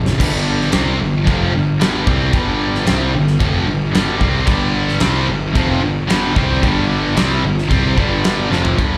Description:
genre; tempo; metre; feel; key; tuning
hard rock; 112 BPM; 4/4; straight; unclear; A4 = 441 Hz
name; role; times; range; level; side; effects
high-gain distorted guitar; riff; 0.0-9.0 s; F2 to C4; -23 LUFS; equal; distortion, slapback echo
overdriven electric guitar; riff; 0.0-9.0 s; F2 to C4; -25 LUFS; equal; slapback echo
fuzz picked electric bass; bass; 0.0-9.0 s; F1 to C2; -22 LUFS; equal; overdrive
huge arena drum kit; drums; 0.1-8.9 s; crash cymbal, kick drum, snare drum, toms; -22 LUFS; equal; none
high-gain distorted guitar; riff; 4.5-8.8 s; F2 to C4; -24 LUFS; equal; distortion, slapback echo
room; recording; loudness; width
light reverb; live gig heard through the venue's PA, club reverb; -16 LUFS; mono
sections
0.2-8.8 A section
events
drum fill 0.0, 8.5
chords
0.2 G5

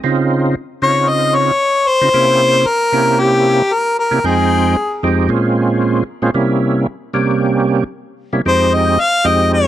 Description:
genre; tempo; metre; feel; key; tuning
blues; 114 BPM; 4/4; straight; F minor; A4 = 440 Hz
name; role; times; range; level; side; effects
percussive tonewheel organ; accompaniment; 0.0-9.7 s; F2 to G5; -14 LUFS; right 2 dB; slow rotary speaker, overdrive, chorus vibrato
warm harmonica; melody; 0.8-5.0, 8.5-9.7 s; G4 to F5; -13 LUFS; left 2 dB; none
room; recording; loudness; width
small room ambience; dry, close 1970s-style studio recording; -12 LUFS; side -12 dB against mid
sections
0.0-8.5 A section; 8.5-9.7 A section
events
none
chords
0.0 Dbmaj7; 2.1 C7b9; 4.2 Fm9; 5.3 Bbm9; 6.4 C7b9; 8.5 Fm9

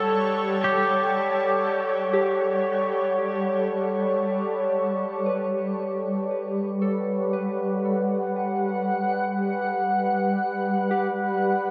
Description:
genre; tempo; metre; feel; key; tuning
ambient; 58 BPM; 4/4; straight; G lydian; A4 = 440 Hz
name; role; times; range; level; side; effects
pedal steel guitar; melody; 0.0-3.7 s; G4 to A4; -30 LUFS; equal; shimmer reverb, delay
shimmering ambient pad; sustained chords; 0.0-11.7 s; G3 to F#5; -26 LUFS; equal; chorus, built-in reverb, shimmer reverb
soft synth bell; arpeggios; 0.0-11.7 s; G4 to F#5; -35 LUFS; equal; chorus, phaser, shimmer reverb, delay
organ-like drone; drone; 1.2-4.9 s; none; barely audible; none; none
room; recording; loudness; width
wet concert hall reverb, RT60 2.2 s; worn, warbling old tape, cassette tape, warbly pitch drift; -25 LUFS; mono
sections
0.0-4.7 A section; 4.7-11.7 B section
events
none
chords
0.0 Gmaj7sus2; 4.7 Gmaj7

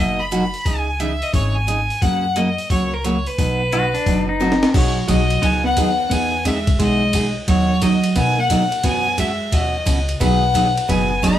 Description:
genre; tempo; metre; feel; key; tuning
country, western swing; 176 BPM; 4/4; swing 65% on 8ths; B major; A4 = 440 Hz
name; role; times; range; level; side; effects
bright fiddle; melody; 0.0-11.4 s; A#4 to B5; -21 LUFS; left 2 dB; none
picked steel-string acoustic guitar; accompaniment; 0.0-11.3 s; B2 to A#4; -22 LUFS; right 2 dB; none
upright bass; bass; 0.0-11.4 s; F#1 to B2; -23 LUFS; equal; none
breakbeat sampler-style drum kit; drums; 0.3-11.3 s; crash cymbal, hi-hat, kick drum, ride cymbal, snare drum; -22 LUFS; equal; none
pedal steel guitar; second line; 3.7-4.7 s; D4 to F#4; -22 LUFS; left 3 dB; none
vintage hollow-body jazz guitar; second line; 4.7-11.4 s; F#3 to D#4; -22 LUFS; right 1 dB; none
room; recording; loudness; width
moderate studio ambience, RT60 0.5 s; band playing live in one room; -16 LUFS; side -12 dB against mid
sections
0.0-4.7 A section; 4.7-11.4 B section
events
drum fill 4.4-4.7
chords
0.0 Bmaj7; 0.7 C#madd9; 2.0 F#; 3.4 B; 4.7 B6; 6.1 Emaj7; 7.5 Bmaj7/D#; 8.8 F#9sus4; 10.2 B6

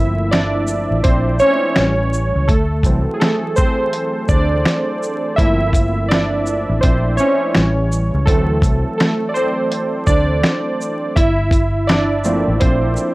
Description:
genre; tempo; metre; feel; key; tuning
lo-fi hip hop; 83 BPM; 4/4; swing 60% on 16ths; G dorian; A4 = 440 Hz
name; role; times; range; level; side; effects
warm analog keys; accompaniment; 0.0-13.1 s; E3 to E5; -17 LUFS; right 1 dB; chorus, cassette tape, low-pass filter
vintage muted fingered electric bass; bass; 0.0-13.0 s; G1 to D2; -19 LUFS; equal; none
lo-fi sampler-style drum kit; drums; 0.3-13.1 s; finger snaps, hi-hat, kick drum, shaker, snare drum; -16 LUFS; equal; none
room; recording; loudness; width
light reverb; vinyl crackle; -14 LUFS; side -20 dB against mid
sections
0.0-13.1 A section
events
synth keys solo 0.0-13.1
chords
0.0 Gm11; 1.8 A7; 2.5 D9; 5.4 Gm11; 7.6 A7; 8.3 D9; 11.2 Gm11

